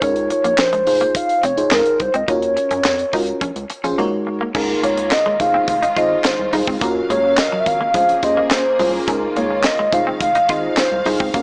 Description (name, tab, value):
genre	early-eighties boogie funk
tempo	106 BPM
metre	4/4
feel	straight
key	unclear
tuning	A4 = 440 Hz
part	hollow clarinet-like synth lead	melody	0.0-11.2 s	Bb4 to F5	-20 LUFS	equal	chorus
part	FM electric piano with soft pad layer	accompaniment	0.0-11.4 s	Ab3 to Db5	-25 LUFS	equal	chorus, tremolo
part	semi-hollow electric guitar	riff	0.0-11.4 s	Gb3 to F4	-28 LUFS	equal	lush chorus
part	rubbery square bass	bass	0.0-11.4 s	F1 to Gb2	-32 LUFS	equal	none
part	tight funk drum kit	drums	0.0-11.4 s	crash cymbal, handclaps, hi-hat, kick drum, snare drum	-24 LUFS	equal	none
part	rich studio string section	sustained chords	4.5-11.4 s	Db3 to F5	-31 LUFS	equal	none
room	light reverb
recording	small speaker sound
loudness	-18 LUFS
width	mono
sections	0.0-4.5 A section; 4.5-11.4 B section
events	none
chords	0.0 Db69; 0.9 Fm7; 2.3 Ebm9; 3.4 Bbm7; 4.0 Ab9sus4; 4.5 Db69; 5.4 Fm7; 6.8 Ebm9; 7.9 Bbm7; 9.1 Db69; 9.9 Fm7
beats	| 0.02 0.59 1.15 1.72 | 2.28 2.85 3.42 3.98 | 4.55 5.11 5.68 6.25 | 6.81 7.38 7.94 8.51 | 9.08 9.64 10.21 10.77 | 11.34